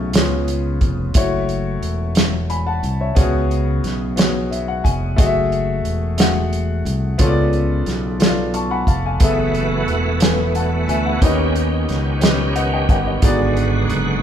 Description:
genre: slow gospel.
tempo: 60 BPM (dotted quarters).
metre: 6/8.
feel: straight.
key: F# minor.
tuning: A4 = 440 Hz.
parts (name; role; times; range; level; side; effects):
clear grand piano; accompaniment; 0.0-14.2 s; G#2 to C#6; -21 LUFS; left 2 dB; none.
modern bright fingered electric bass; bass; 0.0-14.2 s; E1 to D#2; -21 LUFS; equal; none.
warm soul drum kit; drums; 0.1-14.1 s; hi-hat, kick drum, snare drum; -18 LUFS; right 1 dB; none.
bright tonewheel organ; sustained chords; 9.2-14.2 s; D3 to G4; -22 LUFS; right 4 dB; slow rotary speaker, chorus vibrato.
room: moderate large studio reverb, RT60 1.1 s.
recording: band playing live in one room.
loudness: -16 LUFS.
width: side -9 dB against mid.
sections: 0.0-14.2 A section.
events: grand piano fill 4.2-5.2, 8.2-9.2, 12.2-13.2.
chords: 0.2 C#7; 1.2 F#m7; 3.2 C#7sus4; 5.2 F#m9; 7.2 C#7b9b13; 9.2 F#m11; 11.2 D#aug7; 13.2 G#m7b5.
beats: 0.15 | 1.16 2.16 | 3.17 4.18 | 5.18 6.19 | 7.20 8.20 | 9.21 10.21 | 11.22 12.22 | 13.23.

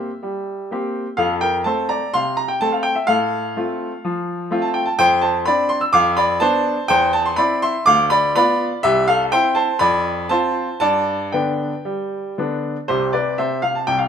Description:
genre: classical-period piano sonatina.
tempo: 125 BPM.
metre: 4/4.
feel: rubato.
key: F major, C major from 5.0 s.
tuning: A4 = 440 Hz.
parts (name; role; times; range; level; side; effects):
clear baby grand piano; solo; 0.0-14.1 s; C2 to E6; -16 LUFS; equal; none.
room: moderate large studio reverb, RT60 1.3 s.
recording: minimal, uncompressed stereo recording.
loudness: -16 LUFS.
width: side -8 dB against mid.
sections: 0.0-12.9 A section; 12.9-14.1 B section.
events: none.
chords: 0.0 C7/G; 1.2 F; 3.1 F/A; 5.0 Dm7/F; 5.9 F6; 6.9 C/E; 7.9 Bdim/D; 8.8 C; 9.8 F; 10.8 G; 12.9 C5.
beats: 0.22 0.70 | 1.18 1.65 2.13 2.61 | 3.08 3.56 4.03 4.51 | 4.99 5.47 5.94 6.42 | 6.90 7.38 7.86 8.35 | 8.83 9.32 9.81 10.31 | 10.82 11.34 11.86 12.38 | 12.90 13.39 13.88.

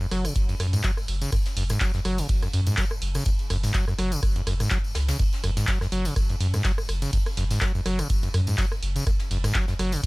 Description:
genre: acid house.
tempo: 124 BPM.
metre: 4/4.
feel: swing 55% on 16ths.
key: unclear.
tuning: A4 = 441 Hz.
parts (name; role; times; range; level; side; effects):
acid bass, saw; riff; 0.0-10.0 s; F#2 to F#3; -28 LUFS; equal; overdrive, sidechain pumping, tape echo.
tambourine; percussion; 0.0-10.1 s; none; -38 LUFS; left 3 dB; none.
warm sub bass; bass; 0.1-10.0 s; F#1 to F#2; -26 LUFS; equal; sidechain pumping.
punchy analog drum machine; drums; 0.1-10.1 s; handclaps, hi-hat, rim click; -31 LUFS; right 1 dB; small room ambience.
soft brush drum kit; drums; 0.1-10.1 s; ride cymbal, snare drum; -41 LUFS; right 2 dB; sidechain pumping on cymbals, high-pass filter on cymbals, small room ambience, high-pass filter on snare, high-pass filter on room.
electronic kick drum; drums; 0.4-10.1 s; none; -25 LUFS; equal; small room ambience.
room: little or no reverb.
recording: none.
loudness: -22 LUFS.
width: side -24 dB against mid.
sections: 0.0-10.1 A section.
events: none.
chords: 0.0 F#5.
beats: 0.36 0.84 | 1.32 1.81 2.29 2.78 | 3.26 3.74 4.23 4.71 | 5.20 5.68 6.16 6.65 | 7.13 7.62 8.10 8.58 | 9.07 9.55 10.03.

